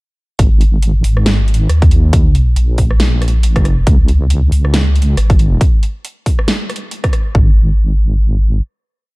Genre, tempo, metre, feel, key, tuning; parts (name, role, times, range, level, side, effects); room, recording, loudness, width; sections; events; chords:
deep dubstep; 138 BPM; 4/4; swing 57% on 16ths, half-time; A4 = 440 Hz
deep soft wobble bass; bass; 0.4-8.6 s; G#1 to D#2; -11 LUFS; equal; chorus
dubstep drum kit; drums; 0.4-7.2 s; hi-hat, rim click, snare drum; -20 LUFS; right 1 dB
electronic kick drum; drums; 0.4-7.4 s; -11 LUFS; equal
little or no reverb; dark, warm production; -10 LUFS; side -24 dB against mid
0.4-7.3 drop; 7.3-9.2 final note
drop 0.4-7.3